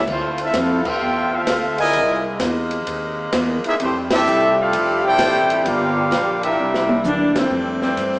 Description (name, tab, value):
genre	jazz, big band swing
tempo	129 BPM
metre	4/4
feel	swing 67% on 8ths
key	F major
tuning	A4 = 440 Hz
part	upright bass	bass	0.0-8.2 s	F1 to G2	-26 LUFS	equal	none
part	warm trumpet section	melody	0.1-7.0 s	A3 to Ab5	-20 LUFS	equal	none
part	muted trombone section	second line	0.1-7.0 s	Bb2 to G4	-21 LUFS	equal	none
part	warm saxophone section	sustained chords	0.1-7.5 s	C3 to G4	-26 LUFS	equal	none
part	open jazz drum kit	drums	0.1-8.2 s	crash cymbal, hi-hat, kick drum, ride cymbal, snare drum, toms	-25 LUFS	equal	none
part	clear saxophone section	melody	7.1-8.2 s	E3 to D4	-18 LUFS	equal	none
room	wet echo chamber reverb, RT60 1.7 s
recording	heard from further back in the room, small speaker sound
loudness	-16 LUFS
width	side -23 dB against mid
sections	0.0-7.5 A section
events	band accent 0.8, 4.0, 7.3; drum fill 6.6-7.5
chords	0.1 Dm9; 1.9 C7alt; 3.8 Fmaj9; 5.7 Gm7; 6.6 C9; 7.5 Fmaj9